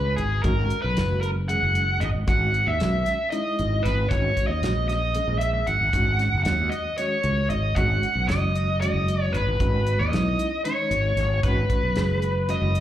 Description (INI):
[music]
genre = electric jazz fusion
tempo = 229 BPM (eighths)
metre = 7/8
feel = straight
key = G# minor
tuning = A4 = 440 Hz
[part]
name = dark smooth lead guitar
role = melody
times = 0.0-12.8 s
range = G#4 to F#5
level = -25 LUFS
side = equal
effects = overdrive, slapback echo
[part]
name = breathy mellow jazz flute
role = second line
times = 0.0-12.8 s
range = G#5 to F#6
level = -34 LUFS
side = left 1 dB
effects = slapback echo
[part]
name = tine electric piano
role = accompaniment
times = 0.0-12.8 s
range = D#3 to G#4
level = -31 LUFS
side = equal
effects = medium tremolo, analog chorus, slapback echo
[part]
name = fretless electric bass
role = bass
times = 0.0-12.8 s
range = F#1 to D#2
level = -24 LUFS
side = equal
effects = none
[part]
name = damped 70s drum kit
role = drums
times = 0.2-12.8 s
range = hi-hat, kick drum, snare drum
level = -29 LUFS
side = equal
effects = none
[sound]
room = small room ambience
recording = live gig heard through the venue's PA, club reverb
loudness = -21 LUFS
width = side -12 dB against mid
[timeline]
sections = 0.0-12.8 A section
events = none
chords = 0.0 G#m7; 2.3 Emaj7/G#; 4.1 F#13/G#; 5.9 G#7(no3); 9.6 Emaj7/G#; 11.4 G#m7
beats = 0.19 | 0.45 0.71 0.97 1.23 1.49 1.75 2.02 | 2.28 2.54 2.80 3.06 3.32 3.58 3.84 | 4.10 4.37 4.63 4.89 5.15 5.41 5.67 | 5.93 6.20 6.46 6.72 6.98 7.24 7.50 | 7.77 8.03 8.29 8.55 8.81 9.08 9.34 | 9.60 9.86 10.12 10.39 10.65 10.91 11.17 | 11.44 11.70 11.96 12.22 12.48 12.75